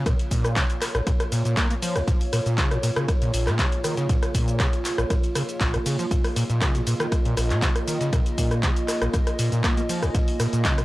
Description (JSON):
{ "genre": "acid house", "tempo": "119 BPM", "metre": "4/4", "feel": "straight", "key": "Bb minor", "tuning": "A4 = 440 Hz", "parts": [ { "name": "dark analog pad", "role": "sustained chords", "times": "0.0-10.8 s", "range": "Bb3 to Eb5", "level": "-30 LUFS", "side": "right 1 dB", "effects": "chorus, sidechain pumping" }, { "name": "overdriven acid bass", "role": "riff", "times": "0.0-10.8 s", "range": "Bb1 to Bb3", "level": "-25 LUFS", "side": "equal", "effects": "distortion, ensemble chorus, tape echo" }, { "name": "ethereal airy pad", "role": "texture", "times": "0.9-10.8 s", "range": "Bb3 to Ab5", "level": "-43 LUFS", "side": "equal", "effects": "none" }, { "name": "dusty soul sampler-style drum kit", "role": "drums", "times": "0.1-10.8 s", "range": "hi-hat, ride cymbal, snare drum", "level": "-39 LUFS", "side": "right 1 dB", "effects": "sidechain pumping on cymbals, high-pass filter on cymbals, high-pass filter on snare, sidechain pumping on hats, high-pass filter on hats, high-pass filter on room" }, { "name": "electronic kick drum", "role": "drums", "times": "0.1-10.8 s", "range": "none", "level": "-23 LUFS", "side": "equal", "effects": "none" }, { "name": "punchy analog drum machine", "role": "drums", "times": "0.1-10.8 s", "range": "handclaps, hi-hat, rim click, shaker", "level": "-28 LUFS", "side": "equal", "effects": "none" } ], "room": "little or no reverb", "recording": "dry, gritty hardware recording, transformer saturation, cassette tape", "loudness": "-21 LUFS", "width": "side -18 dB against mid", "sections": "0.0-10.8 A section", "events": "none", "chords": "0.0 Bbm" }